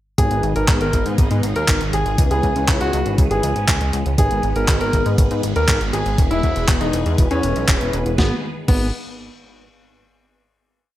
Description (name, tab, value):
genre	italo disco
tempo	120 BPM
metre	4/4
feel	straight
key	G# minor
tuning	A4 = 437 Hz
part	clear baby grand piano	melody	0.2-8.9 s	B3 to A#4	-23 LUFS	equal	digital delay
part	phased string machine	sustained chords	0.2-8.4 s	B2 to B4	-28 LUFS	equal	ensemble chorus, phaser
part	mellow synth brass	stabs	0.2-8.9 s	B3 to B4	-27 LUFS	left 2 dB	chorus, cassette tape
part	chorused synth bass	bass	0.2-8.9 s	E1 to G#2	-22 LUFS	equal	none
part	clean 12-bit digital drum machine	drums	0.2-8.8 s	crash cymbal, handclaps, hi-hat, snare drum	-23 LUFS	equal	studio reverb, gated reverb
part	electronic kick drum	drums	0.2-8.8 s	none	-17 LUFS	equal	studio reverb
room	light reverb, digital ambience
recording	none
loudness	-16 LUFS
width	side -14 dB against mid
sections	0.2-8.2 verse; 8.2-10.2 final chord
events	none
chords	0.2 G#m; 2.2 C#m7; 4.2 G#m; 6.2 E; 8.2 G#m